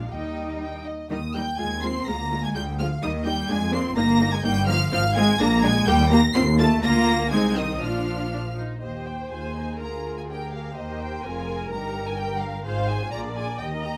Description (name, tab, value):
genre	quick classical-period movement for string orchestra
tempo	126 BPM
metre	2/4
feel	rubato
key	Eb major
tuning	A4 = 440 Hz
part	clear studio violin section	melody	0.0-14.0 s	Eb5 to C7	-33 LUFS	equal	none
part	rich studio viola section	accompaniment	0.0-14.0 s	G3 to Eb5	-32 LUFS	equal	none
part	clear studio double bass section	bass	0.0-14.0 s	F1 to F2	-29 LUFS	equal	none
part	rich studio violin section	second line	0.1-14.0 s	Bb3 to C6	-33 LUFS	equal	none
part	rich studio cello section	bass	0.1-14.0 s	D2 to Eb4	-29 LUFS	equal	none
room	light reverb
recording	none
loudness	-24 LUFS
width	mono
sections	0.0-1.1 A section; 1.1-8.8 A section; 8.8-14.0 A section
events	none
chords	0.1 Eb; 1.6 Fm7/Eb; 2.1 Bb7/D; 3.0 Eb; 3.5 Bb7/F; 4.0 Eb/G; 4.9 Fm/Ab; 5.4 Bb7; 5.9 Eb; 6.3 F7/Eb; 6.8 Bb/D; 7.3 Ab/C; 7.8 Bb; 8.8 Eb; 9.8 Bb7/D; 10.8 Eb; 11.2 Bb5/F; 11.7 Eb/G; 12.7 Fm/Ab; 13.1 Bb7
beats	| 0.11 0.61 | 1.10 1.59 | 2.07 2.55 | 3.03 3.50 | 3.97 4.44 | 4.92 5.40 | 5.87 6.34 | 6.83 7.32 | 7.82 8.32 | 8.81 9.30 | 9.79 10.28 | 10.76 11.23 | 11.71 12.18 | 12.65 13.12 | 13.60